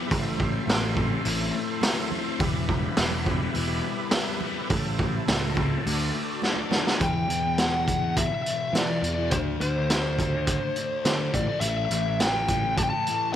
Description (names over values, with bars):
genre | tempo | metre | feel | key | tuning
psychedelic rock | 104 BPM | 4/4 | straight | E minor | A4 = 444 Hz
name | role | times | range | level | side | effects
tonewheel organ | sustained chords | 0.0-7.0 s | E4 to C6 | -34 LUFS | right 9 dB | slow rotary speaker, chorus vibrato
fuzz guitar | riff | 0.0-13.4 s | E2 to F#4 | -31 LUFS | left 10 dB | distortion, phaser
fuzz picked electric bass | bass | 0.1-12.8 s | E1 to E3 | -29 LUFS | right 1 dB | overdrive
raw garage drum kit | drums | 0.1-13.2 s | hi-hat, kick drum, snare drum | -27 LUFS | right 1 dB | none
congas | percussion | 0.4-6.9 s | none | -38 LUFS | right 12 dB | none
fuzz lead guitar | melody | 7.0-13.4 s | C5 to A5 | -28 LUFS | left 1 dB | distortion, slapback echo
room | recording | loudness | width
light reverb | 1960s-style stereo with parts hard left and right | -23 LUFS | side -10 dB against mid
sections
0.0-7.0 A section; 7.0-13.4 B section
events
drum fill 6.4-7.0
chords
0.1 Am; 2.4 Em; 4.7 Am; 5.9 D; 7.0 Em7; 9.3 D5; 11.3 A5